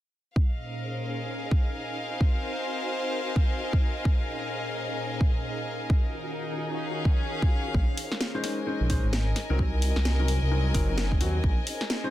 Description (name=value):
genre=UK garage, two-step garage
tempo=130 BPM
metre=4/4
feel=swing 61% on 16ths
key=Bb minor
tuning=A4 = 442 Hz
part: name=soft string machine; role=sustained chords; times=0.4-12.1 s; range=Bb2 to C5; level=-36 LUFS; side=equal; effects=ensemble chorus, sidechain pumping
part: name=electronic kick drum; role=drums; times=0.4-11.6 s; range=none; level=-24 LUFS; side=equal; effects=none
part: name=warm chamber string section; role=texture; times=0.4-12.1 s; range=Db4 to Ab5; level=-33 LUFS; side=left 1 dB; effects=sidechain pumping
part: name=dark detuned saw bass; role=bass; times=7.7-11.6 s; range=Gb1 to Eb2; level=-26 LUFS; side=equal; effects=none
part: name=house drum kit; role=drums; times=8.0-12.0 s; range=hi-hat, snare drum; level=-32 LUFS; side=equal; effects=none
part: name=warm baby grand piano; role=stabs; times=8.3-12.1 s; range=Gb3 to C5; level=-32 LUFS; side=left 2 dB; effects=digital delay
room=digital ambience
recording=dense, heavily limited modern master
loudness=-25 LUFS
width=side -14 dB against mid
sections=0.4-12.1 A section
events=filter sweep on string machine 0.4-12.1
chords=0.4 Bbm11; 2.0 Cm7b5; 4.1 Bbm11; 5.9 Ebm9; 7.7 Bbm11; 9.4 Cm7b5; 11.4 Bbm11